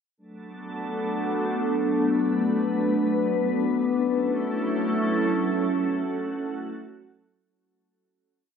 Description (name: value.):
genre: hip hop.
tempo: free time.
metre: none.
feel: none.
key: B minor.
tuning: A4 = 440 Hz.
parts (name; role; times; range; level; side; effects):
glassy FM pad; solo; 0.5-7.4 s; F#3 to B4; -23 LUFS; left 1 dB; ensemble chorus, built-in reverb, ping-pong delay.
room: moderate huge ambient reverb, RT60 8.6 s.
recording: none.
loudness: -23 LUFS.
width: side -7 dB against mid.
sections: 0.2-7.5 verse.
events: fade-out 5.6-7.5.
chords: 0.2 Bm7; 3.8 F#m7.